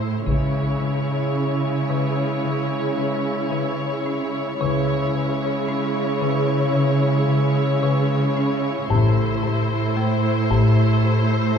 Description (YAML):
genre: cinematic, suspense film score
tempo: 56 BPM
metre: 4/4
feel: straight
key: unclear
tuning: A4 = 441 Hz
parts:
  - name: muted chamber violin section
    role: melody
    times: 0.0-11.6 s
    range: C5 to C#5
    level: -27 LUFS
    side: left 5 dB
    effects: none
  - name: muted chamber viola section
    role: accompaniment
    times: 0.0-11.6 s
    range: G#3 to E4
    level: -26 LUFS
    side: right 4 dB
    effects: none
  - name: folk marimba with medium hard mallets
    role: riff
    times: 0.0-11.4 s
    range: A2 to C#4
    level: -23 LUFS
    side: left 2 dB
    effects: none
  - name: muted chamber cello section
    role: bass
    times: 0.0-11.6 s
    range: A2 to C#3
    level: -24 LUFS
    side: right 3 dB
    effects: none
  - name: muted chamber double bass section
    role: bass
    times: 0.3-9.9 s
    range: A1 to C#2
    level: -29 LUFS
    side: right 3 dB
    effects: none
  - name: taiko ensemble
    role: drums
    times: 0.3-11.0 s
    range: none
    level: -29 LUFS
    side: equal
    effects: none
room: wet scoring stage reverb, RT60 1.6 s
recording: minimal, uncompressed stereo recording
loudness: -18 LUFS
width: side -7 dB against mid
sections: 0.0-11.6 A section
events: none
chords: 0.3 C#m; 8.9 Am